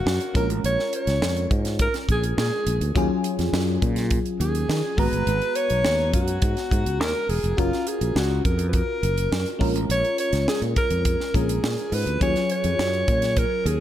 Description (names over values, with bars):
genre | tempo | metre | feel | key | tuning
polished 1980s jazz-funk pop | 104 BPM | 4/4 | straight | unclear | A4 = 440 Hz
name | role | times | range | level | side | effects
warm alto saxophone | melody | 0.0-13.8 s | E#4 to C#5 | -25 LUFS | equal | diffuse ambient delay
FM electric piano | accompaniment | 0.0-13.8 s | F#3 to A#5 | -28 LUFS | left 2 dB | wide subtle chorus
fretless electric bass | bass | 0.1-13.8 s | E1 to D#3 | -25 LUFS | equal | none
tight funk drum kit | drums | 0.1-13.8 s | hi-hat, kick drum, snare drum | -26 LUFS | equal | none
room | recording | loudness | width
moderate plate reverb, RT60 2.1 s | dreamy mix soaked in reverb | -20 LUFS | side -11 dB against mid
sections
0.0-13.8 A section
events
none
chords
0.3 A#m7; 3.0 D#m11; 5.0 G#m9; 7.6 F#maj7; 9.6 A#m7; 12.2 D#m11